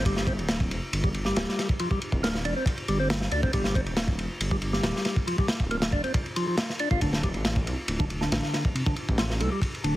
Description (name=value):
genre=breakbeat, breaks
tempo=138 BPM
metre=4/4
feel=straight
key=unclear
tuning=A4 = 440 Hz
part: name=percussive tonewheel organ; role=riff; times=0.0-9.9 s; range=C3 to F4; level=-30 LUFS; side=equal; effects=slow rotary speaker, overdrive, tape echo
part: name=dark detuned saw bass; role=bass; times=0.0-10.0 s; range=D1 to D2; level=-30 LUFS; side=equal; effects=none
part: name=crunchy breakbeat drum kit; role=drums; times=0.1-9.9 s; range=kick drum, ride cymbal, snare drum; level=-27 LUFS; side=equal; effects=none
room=studio ambience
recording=heavily compressed radio sound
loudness=-24 LUFS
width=side -15 dB against mid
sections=0.0-10.0 A section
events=none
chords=0.1 G5; 7.0 D7(no3)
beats=| 0.06 0.49 0.93 1.36 | 1.80 2.23 2.67 3.10 | 3.54 3.97 4.41 4.84 | 5.28 5.71 6.14 6.58 | 7.01 7.45 7.88 8.32 | 8.75 9.19 9.62